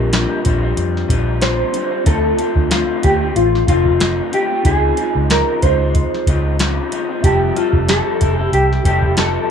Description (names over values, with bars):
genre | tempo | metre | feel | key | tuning
indie pop, bedroom pop | 93 BPM | 4/4 | swing 55% on 16ths | F major | A4 = 441 Hz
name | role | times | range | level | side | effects
mellow electric guitar | melody | 0.0-9.5 s | F4 to C5 | -18 LUFS | left 1 dB | ensemble chorus, slapback echo
electric guitar through a small old amp | accompaniment | 0.0-9.5 s | Bb2 to A4 | -21 LUFS | left 3 dB | lush chorus, warbly pitch drift
mellow tine electric piano | accompaniment | 0.0-9.5 s | C4 to A5 | -27 LUFS | right 1 dB | medium stereo tremolo, cassette tape
vintage muted fingered electric bass | bass | 0.0-9.4 s | F1 to F2 | -19 LUFS | right 1 dB | none
soft vintage rhythm box | drums | 0.1-9.3 s | hi-hat, kick drum, snare drum | -17 LUFS | equal | none
room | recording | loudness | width
light reverb | none | -13 LUFS | side -7 dB against mid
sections
0.0-9.5 A section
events
none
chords
0.0 Bb69; 2.1 Dm7; 4.7 Dbmaj7; 7.2 Fmaj9